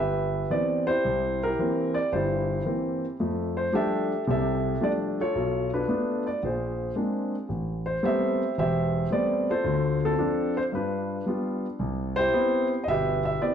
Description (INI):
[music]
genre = solo jazz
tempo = 111 BPM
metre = 4/4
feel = swing 69% on 8ths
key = C major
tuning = A4 = 440 Hz
[part]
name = warm concert grand piano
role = solo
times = 0.0-13.5 s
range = E1 to E5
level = -24 LUFS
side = equal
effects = none
[sound]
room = wet large studio reverb, RT60 1.2 s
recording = nothing above 10.5 kHz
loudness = -24 LUFS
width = side -8 dB against mid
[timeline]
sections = 0.0-13.5 A section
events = none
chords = 0.0 Cmaj7; 1.0 C7; 3.2 F69; 5.3 Bm7b5; 6.4 Bb9; 7.5 Am9; 9.6 Dm7; 10.7 G7; 11.8 Cmaj7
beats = 0.49 | 1.03 1.57 2.11 2.65 | 3.19 3.72 4.26 4.80 | 5.34 5.88 6.41 6.95 | 7.49 8.03 8.57 9.11 | 9.65 10.18 10.72 11.26 | 11.80 12.34 12.88 13.42